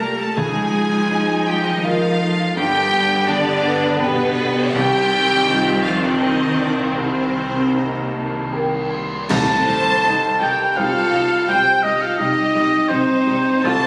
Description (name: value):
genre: cinematic, emotional film score for orchestra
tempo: 77-86 BPM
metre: 3/4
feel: rubato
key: C dorian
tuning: A4 = 441 Hz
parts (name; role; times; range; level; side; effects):
- warm symphonic violin section; melody; 0.0-13.9 s; Eb4 to Bb5; -26 LUFS; equal; none
- clear clarinet; second line; 0.0-8.5 s; Bb3 to Bb4; -29 LUFS; equal; none
- warm chamber violin section; second line; 0.0-13.9 s; Bb3 to A5; -28 LUFS; equal; none
- clear concert grand piano; accompaniment; 0.0-13.9 s; C2 to Eb5; -29 LUFS; equal; none
- rich symphonic viola section; accompaniment; 0.0-13.7 s; D3 to F4; -27 LUFS; equal; none
- warm symphonic cello section; bass; 0.0-13.7 s; C2 to Bb3; -28 LUFS; equal; none
- warm symphonic double bass section; bass; 0.0-13.7 s; G1 to Db2; -35 LUFS; equal; none
- dark French horn section; sustained chords; 0.4-13.9 s; C4 to B4; -26 LUFS; equal; none
- cymbal swell, clash cymbals and concert bass drum; percussion; 4.8-10.7 s; none; -31 LUFS; equal; none
- concert flute; second line; 7.7-13.9 s; C5 to C6; -28 LUFS; equal; none
- warm oboe; second line; 9.3-13.9 s; C5 to A5; -21 LUFS; equal; none
- timpani; percussion; 9.3-10.4 s; C3; -32 LUFS; equal; none
room: moderate scoring stage reverb, RT60 2.1 s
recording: recorded on a phone in the room, studio reverb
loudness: -18 LUFS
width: mono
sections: 0.0-9.3 A section; 9.3-13.9 B section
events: band accent 9.3-10.0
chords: 0.4 Dbadd9; 2.6 G; 4.8 Cm; 7.0 Cm7; 9.3 Cm